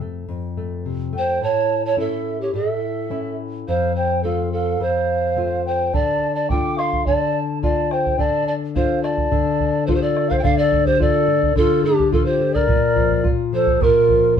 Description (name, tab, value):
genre	andean folk, Andean ensemble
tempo	106 BPM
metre	2/4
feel	straight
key	D minor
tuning	A4 = 440 Hz
part	nylon-string guitar	accompaniment	0.0-14.4 s	F2 to F4	-23 LUFS	left 6 dB	none
part	mellow hollow polished pan flute	melody	1.2-14.4 s	G4 to G5	-20 LUFS	right 2 dB	none
part	mellow large quena	second line	1.2-14.4 s	D4 to D6	-25 LUFS	equal	none
part	bombo	percussion	5.9-14.4 s	none	-23 LUFS	right 2 dB	none
room	moderate studio reverb, RT60 0.7 s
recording	band playing live in one room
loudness	-17 LUFS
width	side -8 dB against mid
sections	0.0-1.4 A section; 1.4-10.4 B section; 10.4-14.4 C section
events	none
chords	0.0 F; 1.4 A; 3.7 F; 5.9 Dm; 12.7 Bb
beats	| 0.30 0.87 | 1.43 1.99 | 2.56 3.12 | 3.69 4.25 | 4.82 5.38 | 5.94 6.51 | 7.07 7.63 | 8.20 8.76 | 9.32 9.88 | 10.45 11.01 | 11.57 12.13 | 12.69 13.26 | 13.82 14.38